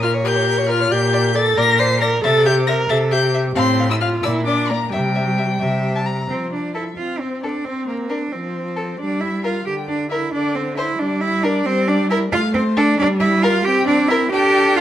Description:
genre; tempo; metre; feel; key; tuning
quick classical-period movement for string quartet; 90 BPM (dotted quarters); 6/8; straight; F major; A4 = 440 Hz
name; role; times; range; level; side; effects
rich violin; melody; 0.0-14.8 s; Bb4 to C7; -23 LUFS; left 6 dB; none
warm violin; second line; 0.0-14.8 s; A4 to Bb5; -24 LUFS; left 3 dB; none
dark viola; accompaniment; 0.0-14.8 s; D3 to C5; -21 LUFS; equal; none
clear cello; bass; 0.0-14.8 s; A2 to G4; -20 LUFS; right 2 dB; none
room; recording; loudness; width
moderate recital hall reverb, RT60 1.8 s; vinyl crackle; -16 LUFS; side -11 dB against mid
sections
0.0-6.3 A section; 6.3-14.8 B section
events
none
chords
0.0 Gdim/Bb; 0.9 Gm/Bb; 2.2 C; 3.6 F/A; 4.2 Bb; 4.9 C; 6.3 F5; 7.7 Bbadd9; 8.3 F5; 9.0 G5; 10.3 Cadd9/D; 11.0 G5; 11.7 C/G; 12.3 F/A; 13.0 N.C.; 13.7 C

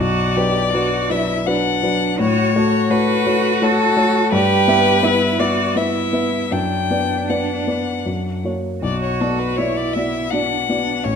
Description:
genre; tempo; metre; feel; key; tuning
classical, slow romantic movement for piano trio; 77-86 BPM; 3/4; rubato; B minor; A4 = 439 Hz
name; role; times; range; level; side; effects
rich violin; melody; 0.0-11.2 s; A4 to G5; -21 LUFS; left 9 dB; none
rich cello; second line; 0.0-11.2 s; C#4 to G4; -22 LUFS; right 8 dB; none
warm grand piano; accompaniment; 0.0-11.2 s; A1 to E5; -19 LUFS; left 2 dB; none
room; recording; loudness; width
moderate recital hall reverb, RT60 1.5 s; none; -16 LUFS; side -6 dB against mid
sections
0.0-11.2 A section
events
none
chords
0.0 Bm; 2.2 F#m/A; 4.3 Em/G; 6.5 Bm/F#; 8.1 F#; 8.8 Bm

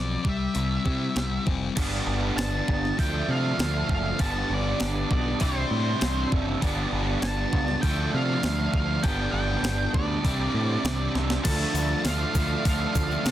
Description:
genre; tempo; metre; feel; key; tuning
indie rock; 99 BPM; 4/4; straight; D dorian; A4 = 440 Hz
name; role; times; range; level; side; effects
octave-fuzz lead guitar; melody; 0.0-13.3 s; C5 to A5; -32 LUFS; equal; distortion
sludgy distorted guitar; riff; 0.0-13.3 s; F3 to A4; -30 LUFS; left 7 dB; overdrive
growling picked electric bass; bass; 0.0-13.3 s; F1 to C3; -28 LUFS; equal; overdrive
clean 12-bit digital drum machine; drums; 0.2-13.3 s; crash cymbal, hi-hat, kick drum, snare drum; -27 LUFS; equal; overdrive
biting overdriven guitar; riff; 1.8-13.3 s; G2 to D4; -30 LUFS; right 9 dB; ensemble chorus
mellow tonewheel organ; sustained chords; 11.4-13.3 s; A4 to D6; -42 LUFS; right 1 dB; none
egg shaker; percussion; 11.5-13.3 s; none; -42 LUFS; left 12 dB; none
room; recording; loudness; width
little or no reverb; dense, heavily limited modern master; -23 LUFS; side -12 dB against mid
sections
0.0-1.8 A section; 1.8-11.5 B section; 11.5-13.3 C section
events
drum fill 11.2-11.5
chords
0.2 C; 1.8 Gadd9; 3.0 Dm7; 4.2 G; 5.4 Csus2; 6.6 Gadd9; 7.8 Dm7; 9.0 G; 10.2 Csus2; 11.5 Dm

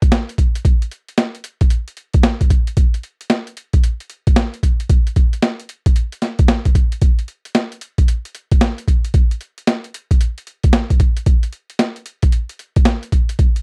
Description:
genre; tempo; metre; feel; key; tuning
R&B; 113 BPM; 4/4; swing 64% on 16ths; none; none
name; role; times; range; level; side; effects
boom bap sampler-style drum kit; drums; 0.0-13.6 s; hi-hat, kick drum, snare drum; -16 LUFS; equal; none
room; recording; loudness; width
light reverb; dry, close 1970s-style studio recording; -18 LUFS; mono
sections
0.0-13.6 A section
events
none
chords
none

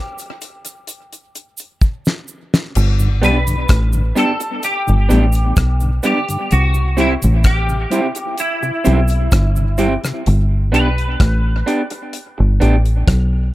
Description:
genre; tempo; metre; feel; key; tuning
dub reggae; 64 BPM; 4/4; straight; G major; A4 = 443 Hz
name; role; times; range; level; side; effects
semi-hollow electric guitar; melody; 0.0-11.7 s; E4 to B4; -22 LUFS; equal; ensemble chorus, tape echo
damped 70s drum kit; drums; 0.2-13.3 s; crash cymbal, hi-hat, kick drum, rim click, snare drum; -18 LUFS; equal; none
cabasa; percussion; 0.2-10.2 s; none; -31 LUFS; right 6 dB; high-pass filter on perc
deep dub fingered electric bass; bass; 2.8-13.5 s; G1 to C2; -14 LUFS; equal; none
mellow tonewheel organ; accompaniment; 3.0-10.1 s; G2 to E4; -24 LUFS; left 2 dB; chorus vibrato, slow rotary speaker, high-pass filter, tape echo
electric guitar through a small old amp; accompaniment; 3.2-12.8 s; B3 to G4; -20 LUFS; right 2 dB; high-pass filter, tape echo
room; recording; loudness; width
small room ambience; none; -13 LUFS; side -16 dB against mid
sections
0.0-2.8 A section; 2.8-13.5 B section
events
break 0.0-2.8; drum fill 1.8-2.8; part muted 10.3-13.5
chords
0.0 N.C.; 2.8 G; 6.5 C; 10.3 G

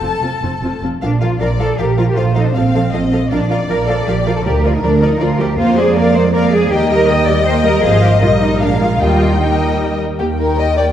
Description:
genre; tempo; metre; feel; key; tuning
quick classical-period movement for string orchestra; 157 BPM; 3/4; rubato; Bb major, Eb major from 5.6 s; A4 = 440 Hz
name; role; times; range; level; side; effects
rich studio violin section; melody; 0.0-10.9 s; D5 to A5; -24 LUFS; left 5 dB; none
warm studio violin section; second line; 0.0-10.9 s; G4 to G5; -19 LUFS; left 3 dB; none
warm studio viola section; accompaniment; 0.0-10.9 s; Eb3 to C5; -19 LUFS; right 1 dB; none
rich studio cello section; bass; 0.0-10.9 s; Eb2 to Eb5; -19 LUFS; right 1 dB; none
rich studio double bass section; bass; 0.0-10.9 s; F1 to F2; -16 LUFS; right 2 dB; none
room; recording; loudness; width
wet concert hall reverb, RT60 2.4 s; dark, warm production, faint mains hum; -12 LUFS; side -10 dB against mid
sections
0.0-1.0 A section; 1.0-10.2 B section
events
none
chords
0.0 F; 1.0 Bb; 2.2 F/Bb; 3.3 Bb; 4.5 Bb/D; 5.6 Bb7/F; 6.7 Eb; 7.8 Fm/Ab; 8.2 Eb/Bb; 8.6 Bb7; 9.0 Eb

